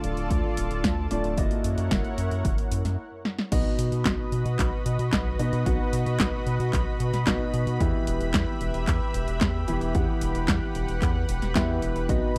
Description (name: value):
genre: italo disco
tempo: 112 BPM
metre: 4/4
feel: straight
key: B major from 3.5 s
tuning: A4 = 438 Hz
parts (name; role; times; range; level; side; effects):
- lush unison pad; sustained chords; 0.0-12.4 s; E4 to B5; -36 LUFS; equal; chorus
- warm grand piano; stabs; 0.0-12.4 s; B2 to F#5; -34 LUFS; equal; none
- round analog bass; bass; 0.0-12.4 s; D1 to B2; -30 LUFS; equal; none
- house drum kit; drums; 0.0-12.4 s; crash cymbal, handclaps, hi-hat, snare drum; -31 LUFS; equal; studio reverb
- electronic kick drum; drums; 0.3-12.2 s; none; -31 LUFS; equal; studio reverb
room: little or no reverb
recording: dry, close 1970s-style studio recording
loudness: -26 LUFS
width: mono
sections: 0.0-3.5 A section; 3.5-12.4 B section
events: stop 3.0-3.5; drum fill 3.3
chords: 0.0 Dm; 1.4 F#7; 3.5 B; 7.8 Em